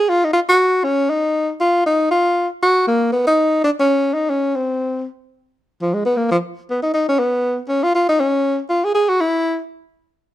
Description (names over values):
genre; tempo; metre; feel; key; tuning
jazz; 237 BPM; 4/4; swing 60% on 8ths; Db mixolydian; A4 = 440 Hz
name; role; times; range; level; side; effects
breathy tenor saxophone; solo; 0.0-9.6 s; F3 to Ab4; -15 LUFS; equal; none
room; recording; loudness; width
light reverb; close, detailed microphones; -15 LUFS; side -14 dB against mid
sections
0.0-5.1 A section; 5.1-10.3 B section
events
tenor saxophone solo 5.1-10.3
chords
none